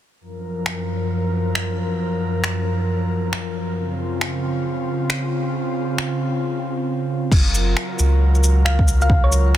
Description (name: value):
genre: future garage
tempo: 135 BPM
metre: 4/4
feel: swing 62% on 16ths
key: unclear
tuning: A4 = 440 Hz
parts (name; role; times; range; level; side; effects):
- airy breathy pad; sustained chords; 0.2-9.6 s; Gb2 to Bb4; -22 LUFS; equal; chorus, sidechain pumping
- deep house drum kit; drums; 0.7-9.6 s; crash cymbal, finger snaps, shaker; -26 LUFS; equal; soft clipping on snare, studio reverb
- warm sub bass; bass; 7.3-9.6 s; Gb1 to Db2; -16 LUFS; equal; sidechain pumping
- electronic kick drum; drums; 7.3-9.2 s; none; -16 LUFS; equal; studio reverb
- thumb-piano-like synth pluck; melody; 8.7-9.5 s; Db5 to F5; -23 LUFS; equal; chorus, digital delay
room: little or no reverb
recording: dense, heavily limited modern master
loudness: -18 LUFS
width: side -12 dB against mid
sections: 0.2-7.3 A section; 7.3-9.6 B section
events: none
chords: 0.2 Gbmaj7; 3.8 Dbmaj7; 7.3 Gbmaj7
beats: | 0.21 0.66 1.10 1.55 | 1.99 2.44 2.88 3.33 | 3.77 4.21 4.66 5.10 | 5.55 5.99 6.44 6.88 | 7.33 7.77 8.21 8.66 | 9.10 9.55